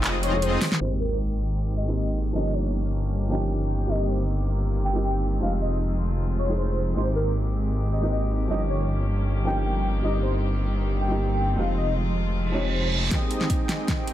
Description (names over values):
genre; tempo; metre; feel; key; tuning
future bass; 156 BPM; 4/4; half-time; Ab major; A4 = 440 Hz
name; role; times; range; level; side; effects
felt-muted upright piano; accompaniment; 0.0-14.1 s; F3 to G5; -31 LUFS; right 1 dB; sidechain pumping, tape echo
rich chamber string section; sustained chords; 0.0-14.1 s; Eb3 to G5; -36 LUFS; left 2 dB; sidechain pumping, low-pass filter
big bright polysynth; riff; 0.0-0.6, 13.1-14.1 s; C4 to Eb5; -29 LUFS; equal; chorus, cassette tape, sidechain pumping, tape echo
wide detuned saw bass; bass; 0.0-13.1 s; F1 to Ab1; -25 LUFS; equal; chorus, sidechain pumping
pop drum kit; drums; 0.0-0.8, 13.1-14.1 s; handclaps, hi-hat, snare drum; -27 LUFS; equal; low-pass filter on hats, studio reverb, low-pass filter on snare
warm velvety synth lead; melody; 0.2-13.0 s; Bb4 to G5; -32 LUFS; left 1 dB; chorus, sidechain pumping, tape echo
sub drop, reverse cymbal and riser; sound effects; 0.8-2.3, 12.5-14.1 s; none; -33 LUFS; right 3 dB; none
electronic kick drum; drums; 13.1-14.0 s; none; -26 LUFS; equal; studio reverb
room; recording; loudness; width
digital ambience; low-pass filter; -22 LUFS; side -12 dB against mid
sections
0.8-13.1 A section; 13.1-14.1 B section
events
kick drops out 0.4-0.8; drum fill 0.6, 13.1-14.1; impact 0.8-2.3; filter sweep 0.8-13.1; reverse cymbal 12.5-13.1; build-up 13.1-14.1; riser 13.1-14.1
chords
0.0 Fm7; 0.8 Abmaj7; 2.3 Eb7/G; 3.9 Cm7/G; 5.4 Fm7; 7.0 Abmaj7; 8.5 Eb7/G; 10.0 Cm7/G; 11.6 Fm7; 13.1 Abmaj7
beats
0.04 0.42 | 0.81 1.19 1.58 1.96 | 2.35 2.73 3.12 3.50 | 3.88 4.27 4.65 5.04 | 5.42 5.81 6.19 6.58 | 6.96 7.35 7.73 8.12 | 8.50 8.88 9.27 9.65 | 10.04 10.42 10.81 11.19 | 11.58 11.96 12.35 12.73 | 13.12 13.50 13.88